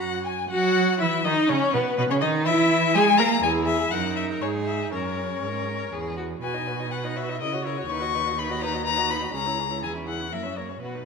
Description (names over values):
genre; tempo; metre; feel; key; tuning
quick classical-period movement for string quartet; 122 BPM; 3/4; straight; B major; A4 = 440 Hz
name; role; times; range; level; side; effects
warm violin; melody; 0.0-11.1 s; B4 to C#6; -26 LUFS; left 8 dB; none
warm violin; second line; 0.0-11.1 s; B3 to A#5; -29 LUFS; left 2 dB; none
rich viola; accompaniment; 0.0-11.1 s; A#3 to A#4; -30 LUFS; right 3 dB; none
rich cello; bass; 0.0-11.1 s; C#2 to A#3; -28 LUFS; right 6 dB; none
room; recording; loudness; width
moderate scoring stage reverb, RT60 1.8 s; minimal, uncompressed stereo recording; -22 LUFS; side -5 dB against mid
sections
0.5-11.1 A section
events
none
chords
0.0 N.C.; 0.5 B; 2.0 E/B; 3.4 Emaj9#11; 4.9 F#; 6.4 B; 7.4 F#7/C#; 7.9 B/D#; 9.3 C#m; 9.8 C#m/E; 10.3 F#7